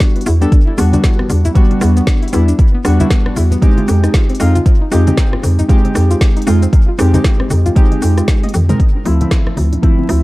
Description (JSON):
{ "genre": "deep house", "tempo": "116 BPM", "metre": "4/4", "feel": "swing 60% on 16ths", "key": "unclear", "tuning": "A4 = 440 Hz", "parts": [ { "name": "soft round pluck", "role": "arpeggios", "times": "0.0-10.1 s", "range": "B3 to Eb5", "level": "-23 LUFS", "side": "left 2 dB", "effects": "chorus, sidechain pumping, tape echo" }, { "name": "warm analog keys", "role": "stabs", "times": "0.0-10.2 s", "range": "F3 to Bb4", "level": "-17 LUFS", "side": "equal", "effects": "chorus, sidechain pumping, low-pass filter, dub echo" }, { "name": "deep house drum kit", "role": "drums", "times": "0.0-10.2 s", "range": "hi-hat, rim click, shaker, snare drum, toms", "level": "-23 LUFS", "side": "equal", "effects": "none" }, { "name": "electronic kick drum", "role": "drums", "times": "0.0-10.0 s", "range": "none", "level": "-11 LUFS", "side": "equal", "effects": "none" }, { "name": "hollow knocking FM bass", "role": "bass", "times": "0.3-10.2 s", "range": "D2 to F2", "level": "-12 LUFS", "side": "equal", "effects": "sidechain pumping" }, { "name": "congas", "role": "percussion", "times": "0.9-10.1 s", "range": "none", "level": "-23 LUFS", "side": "left 1 dB", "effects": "tape echo" } ], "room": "little or no reverb", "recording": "echo-heavy mix, vinyl crackle", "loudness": "-10 LUFS", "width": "side -19 dB against mid", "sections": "0.0-8.8 A section; 8.8-10.2 B section", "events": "drop 0.0-8.8; drum fill 8.4-8.8", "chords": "0.0 Em9; 3.6 Fm9; 8.8 Dm9" }